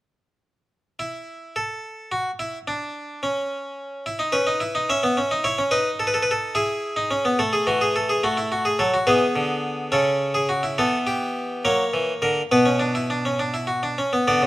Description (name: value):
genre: classical, baroque-style 3-part fugue for harpsichord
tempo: 71 BPM (dotted quarters)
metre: 6/8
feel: straight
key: A major, B minor from 10.8 s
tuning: A4 = 440 Hz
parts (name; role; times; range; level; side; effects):
- harpsichord; solo; 1.0-14.5 s; B2 to E5; -20 LUFS; equal; none
room: light reverb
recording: close, detailed microphones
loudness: -20 LUFS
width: side -16 dB against mid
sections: 0.7-10.8 A section; 10.8-14.3 B section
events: none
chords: 0.7 N.C.; 4.1 E5; 4.9 Bsus24; 5.7 B7/D#; 6.5 E; 7.4 A5; 8.2 F#m9; 9.1 E7; 9.9 A/C#; 10.8 Em; 11.6 F#7; 12.5 Bm